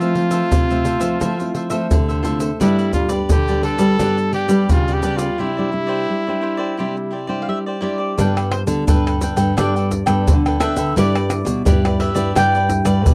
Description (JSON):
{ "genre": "samba and choro", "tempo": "86 BPM", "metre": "4/4", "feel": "straight", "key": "C major, G major from 8.2 s", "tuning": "A4 = 439 Hz", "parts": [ { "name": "clear trumpet", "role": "melody", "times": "0.0-7.5 s", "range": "E4 to A4", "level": "-24 LUFS", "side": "equal", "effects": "slapback echo" }, { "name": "cavaquinho", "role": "accompaniment", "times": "0.0-13.1 s", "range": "D4 to G5", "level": "-28 LUFS", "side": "equal", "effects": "none" }, { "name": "nylon-string guitar", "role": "accompaniment", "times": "0.0-13.1 s", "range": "G2 to B4", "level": "-26 LUFS", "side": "equal", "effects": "none" }, { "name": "nylon-string guitar", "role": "bass", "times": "0.0-13.1 s", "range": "G2 to G3", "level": "-22 LUFS", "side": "equal", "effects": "none" }, { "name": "tube shaker, pandeiro, surdo and tamborim", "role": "percussion", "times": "0.0-13.1 s", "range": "none", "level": "-21 LUFS", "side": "equal", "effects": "none" }, { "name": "mandolin", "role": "second line", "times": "7.4-13.0 s", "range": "B4 to G5", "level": "-26 LUFS", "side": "equal", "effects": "none" } ], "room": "light reverb", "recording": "dry, close 1970s-style studio recording", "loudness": "-18 LUFS", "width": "mono", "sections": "0.0-8.2 A section; 8.2-13.1 B section", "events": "break 5.4-8.2; mandolin solo 8.2-13.1", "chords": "0.0 Fmaj7; 2.6 G; 5.4 Cadd9; 8.2 Gadd9; 11.0 Em7/G", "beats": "0.52 1.21 1.91 | 2.61 3.30 4.00 4.70 | 5.39 6.09 6.79 7.49 | 8.18 8.88 9.58 10.27 | 10.97 11.66 12.36 13.06" }